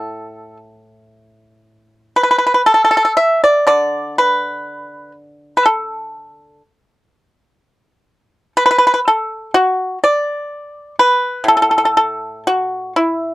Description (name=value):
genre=chinese traditional, Chinese solo plucked strings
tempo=57-64 BPM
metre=4/4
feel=rubato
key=unclear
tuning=A4 = 440 Hz
part: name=pipa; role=solo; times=0.0-13.3 s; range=A2 to E5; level=-13 LUFS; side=equal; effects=none
room=little or no reverb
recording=dry, close 1970s-style studio recording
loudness=-13 LUFS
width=side -17 dB against mid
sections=0.0-13.3 A section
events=none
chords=none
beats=0.60 | 1.64 2.67 3.69 4.68 | 5.64 6.63 7.60 8.56 | 9.51 10.48 11.46 12.46